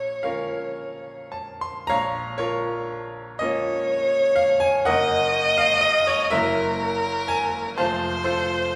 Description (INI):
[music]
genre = classical, romantic duo for violin and grand piano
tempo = 41 BPM (dotted quarters)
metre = 6/8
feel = rubato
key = Bb minor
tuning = A4 = 440 Hz
[part]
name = warm violin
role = melody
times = 0.0-8.8 s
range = Bb4 to Eb5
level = -24 LUFS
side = equal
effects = none
[part]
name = bright baby grand piano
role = accompaniment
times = 0.0-8.8 s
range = F1 to C6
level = -27 LUFS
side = equal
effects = none
[sound]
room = wet recital hall reverb, RT60 1.7 s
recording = recorded in a church or concert hall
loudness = -22 LUFS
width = mono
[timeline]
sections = 0.0-1.9 A section; 1.9-8.8 A section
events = none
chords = 0.0 Bbm; 4.9 Ebm/Gb; 6.3 Gb7; 7.8 F